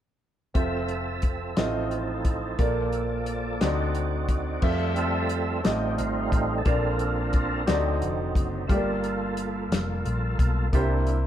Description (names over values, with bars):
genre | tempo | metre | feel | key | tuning
slow gospel | 59 BPM (dotted quarters) | 6/8 | straight | F major | A4 = 440 Hz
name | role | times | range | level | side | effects
clear grand piano | accompaniment | 0.5-11.3 s | G2 to E5 | -29 LUFS | right 1 dB | none
percussive tonewheel organ | sustained chords | 0.5-11.2 s | F3 to E5 | -30 LUFS | right 2 dB | slow rotary speaker, overdrive, chorus vibrato
hollow-body short-scale fingered electric bass | bass | 0.6-11.3 s | F1 to F2 | -29 LUFS | left 1 dB | none
warm soul drum kit | drums | 0.6-11.2 s | crash cymbal, hi-hat, kick drum, snare drum | -26 LUFS | left 1 dB | none
room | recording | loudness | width
moderate studio reverb, RT60 0.8 s | band playing live in one room | -24 LUFS | side -11 dB against mid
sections
0.6-4.6 A section; 4.6-11.3 B section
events
tonewheel organ solo 4.6-11.3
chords
0.6 Fmaj7; 1.6 F7/A; 2.6 Bbmaj7; 3.6 D7b9; 4.6 Fmaj7; 5.6 F7; 6.7 Bbmaj7; 7.7 D7b9; 8.7 Gm7; 10.7 C7